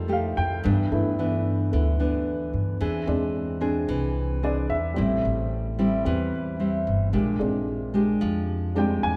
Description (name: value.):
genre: bossa nova.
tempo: 111 BPM.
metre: 4/4.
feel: straight.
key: A minor.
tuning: A4 = 442 Hz.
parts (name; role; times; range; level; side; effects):
nylon-string guitar; accompaniment; 0.0-9.2 s; G2 to G#4; -28 LUFS; equal; none.
warm baby grand piano; accompaniment; 0.0-9.2 s; G3 to Ab5; -32 LUFS; equal; none.
upright bass; bass; 0.0-9.2 s; G1 to G2; -30 LUFS; equal; none.
room: moderate church reverb, RT60 2.8 s.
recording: recorded in a church or concert hall.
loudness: -25 LUFS.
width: mono.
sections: 0.0-9.2 A section.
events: grand piano solo 0.0-9.2.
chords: 0.0 F9; 0.6 G6; 2.8 Eaug7; 5.0 Am7; 7.1 Bb13.